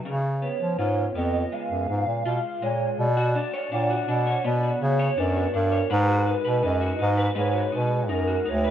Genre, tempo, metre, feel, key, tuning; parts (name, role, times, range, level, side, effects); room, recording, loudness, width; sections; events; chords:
indie pop, bedroom pop; 82 BPM; 4/4; straight; A4 = 438 Hz
electric guitar through a small old amp; accompaniment; 0.0-8.7 s; C#3 to C#5; -30 LUFS; equal; analog chorus, warbly pitch drift
warm bass clarinet; bass; 0.1-8.7 s; D2 to E#3; -24 LUFS; equal
warbly nostalgic lead; melody; 0.4-8.7 s; A#4 to F#5; -28 LUFS; right 1 dB; analog chorus, tape echo
studio reverb; rough home demo mix; -22 LUFS; side -10 dB against mid
0.0-3.0 A section; 3.0-8.7 B section
0.1 C#7; 3.0 Bmadd9; 5.9 G#m7